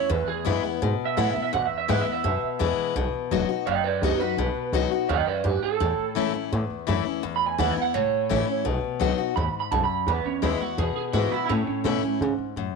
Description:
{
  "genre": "rockabilly",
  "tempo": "168 BPM",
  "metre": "4/4",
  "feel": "straight",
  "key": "E major",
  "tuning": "A4 = 439 Hz",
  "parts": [
    { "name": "electric guitar through a small old amp", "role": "melody", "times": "0.0-12.3 s", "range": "B3 to B5", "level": "-26 LUFS", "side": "right 14 dB", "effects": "lush chorus, tape echo" },
    { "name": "picked steel-string acoustic guitar", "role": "accompaniment", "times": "0.0-12.8 s", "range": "E2 to F#4", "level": "-27 LUFS", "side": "left 11 dB", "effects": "none" },
    { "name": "upright bass", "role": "bass", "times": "0.1-12.7 s", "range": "E1 to C#3", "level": "-27 LUFS", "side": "right 1 dB", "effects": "none" }
  ],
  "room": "light reverb, small room ambience",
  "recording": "1960s-style stereo with parts hard left and right",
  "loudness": "-22 LUFS",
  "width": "side -4 dB against mid",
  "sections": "0.0-10.1 A section; 10.1-12.8 B section",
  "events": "clean electric guitar solo 0.0-10.1",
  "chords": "0.1 E; 3.0 B; 5.8 A; 7.2 E; 7.9 A; 8.7 B; 10.1 E; 11.5 A"
}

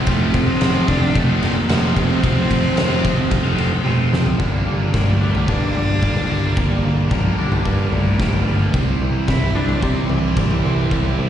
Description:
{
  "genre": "quiet-loud alternative rock",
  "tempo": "111 BPM",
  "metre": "4/4",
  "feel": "straight",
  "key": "G dorian",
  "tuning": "A4 = 440 Hz",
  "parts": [
    { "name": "crunchy overdriven guitar", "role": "riff", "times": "0.0-11.3 s", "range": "F2 to Bb4", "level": "-28 LUFS", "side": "left 11 dB", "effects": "phaser, slapback echo" },
    { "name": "distorted electric guitar", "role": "riff", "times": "0.0-4.4 s", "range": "F2 to C4", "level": "-28 LUFS", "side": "equal", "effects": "none" },
    { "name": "fuzz guitar", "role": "riff", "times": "0.0-11.3 s", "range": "F2 to E4", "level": "-24 LUFS", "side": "right 9 dB", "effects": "distortion" },
    { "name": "picked electric bass", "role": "bass", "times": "0.0-11.3 s", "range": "F1 to C3", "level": "-21 LUFS", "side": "equal", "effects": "none" },
    { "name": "warm cello", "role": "melody", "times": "0.1-11.3 s", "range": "E3 to E4", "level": "-24 LUFS", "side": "equal", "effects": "slapback echo, tape echo" },
    { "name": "oversized low-tuned drum kit", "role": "drums", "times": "0.1-11.0 s", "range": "kick drum, ride cymbal, snare drum, toms", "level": "-20 LUFS", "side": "equal", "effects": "none" },
    { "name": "twangy electric guitar", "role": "arpeggios", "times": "4.4-11.3 s", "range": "C3 to D4", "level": "-29 LUFS", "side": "left 3 dB", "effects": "analog chorus, slapback echo" }
  ],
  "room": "studio ambience",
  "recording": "live gig heard through the venue's PA, recital hall reverb, nothing above 10.8 kHz",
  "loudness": "-15 LUFS",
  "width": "side -10 dB against mid",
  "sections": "0.0-4.4 A section; 4.4-11.3 B section",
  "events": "drum fill 3.9-4.4",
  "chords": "0.1 F; 4.4 Gmadd9; 8.7 Cadd9"
}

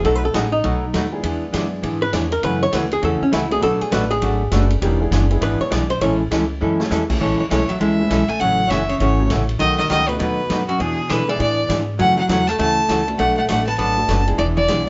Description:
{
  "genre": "country, western swing",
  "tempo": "201 BPM",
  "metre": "4/4",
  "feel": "swing 63% on 8ths",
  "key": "A major",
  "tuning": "A4 = 439 Hz",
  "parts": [
    { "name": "archtop guitar, miked and amplified", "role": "second line", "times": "0.0-14.8 s", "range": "F#2 to D5", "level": "-24 LUFS", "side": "equal", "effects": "none" },
    { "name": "archtop guitar, miked and amplified", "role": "accompaniment", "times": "0.0-14.8 s", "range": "B2 to A4", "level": "-25 LUFS", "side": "equal", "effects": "none" },
    { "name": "warm upright piano", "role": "accompaniment", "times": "0.0-14.9 s", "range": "G3 to B4", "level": "-30 LUFS", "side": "equal", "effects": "none" },
    { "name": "upright bass", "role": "bass", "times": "0.0-14.9 s", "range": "E1 to B2", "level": "-25 LUFS", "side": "equal", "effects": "none" },
    { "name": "swinging big-band drum kit", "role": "drums", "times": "0.0-14.8 s", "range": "crash cymbal, hi-hat, kick drum, ride cymbal, snare drum", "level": "-31 LUFS", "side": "equal", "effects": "none" },
    { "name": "clear fiddle", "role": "melody", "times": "7.2-14.9 s", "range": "F#4 to A5", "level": "-23 LUFS", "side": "equal", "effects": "none" }
  ],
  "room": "wet studio reverb, RT60 0.5 s",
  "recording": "band playing live in one room, nothing above 7.6 kHz",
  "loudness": "-19 LUFS",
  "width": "mono",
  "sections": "0.0-7.2 A section; 7.2-14.9 B section",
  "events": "hollow-body jazz guitar solo 0.0-7.2; drum fill 6.6",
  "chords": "0.0 B7; 1.2 E7; 2.4 F#m7; 3.6 Bm7; 4.8 E7; 6.0 Amaj7; 8.4 F#m7; 9.6 B7; 10.8 E7; 12.0 F#m7; 13.2 Bm7; 14.4 E7"
}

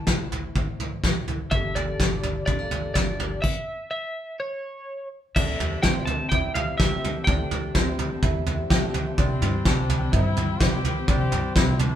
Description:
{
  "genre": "indie folk with a building arrangement",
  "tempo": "125 BPM",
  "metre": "4/4",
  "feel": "straight",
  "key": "unclear",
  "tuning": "A4 = 436 Hz",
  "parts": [
    { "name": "twelve-string electric guitar", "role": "melody", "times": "0.0-8.2 s", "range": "C#5 to A5", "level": "-30 LUFS", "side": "equal", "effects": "tremolo" },
    { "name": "fingerpicked steel-string acoustic guitar", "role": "accompaniment", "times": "0.0-11.1 s", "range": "D2 to G4", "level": "-36 LUFS", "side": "left 4 dB", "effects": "none" },
    { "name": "upright bass", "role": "bass", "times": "0.1-12.0 s", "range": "G1 to G2", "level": "-29 LUFS", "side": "equal", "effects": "none" },
    { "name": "soft brush drum kit", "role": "drums", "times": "0.1-11.9 s", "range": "crash cymbal, kick drum, snare drum, toms", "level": "-23 LUFS", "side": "equal", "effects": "none" },
    { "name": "picked twelve-string acoustic guitar", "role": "accompaniment", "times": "5.3-12.0 s", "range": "C3 to C5", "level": "-35 LUFS", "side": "left 5 dB", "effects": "none" },
    { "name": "bright upright piano", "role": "arpeggios", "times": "5.4-12.0 s", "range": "C4 to G4", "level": "-33 LUFS", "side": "right 3 dB", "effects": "none" },
    { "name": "warm trumpet", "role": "second line", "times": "9.2-12.0 s", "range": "C4 to G4", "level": "-32 LUFS", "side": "left 4 dB", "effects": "none" },
    { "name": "dark chamber string section", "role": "sustained chords", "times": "9.2-12.0 s", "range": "E4 to G5", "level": "-37 LUFS", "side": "left 2 dB", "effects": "none" }
  ],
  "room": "moderate studio reverb, RT60 0.7 s",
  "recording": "band playing live in one room",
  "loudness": "-22 LUFS",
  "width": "side -10 dB against mid",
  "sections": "0.0-5.4 A section; 5.4-12.0 B section",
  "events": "stop 3.4-5.4",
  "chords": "0.0 Am; 1.5 Gm; 3.4 N.C.; 5.4 Am7/D; 9.2 C"
}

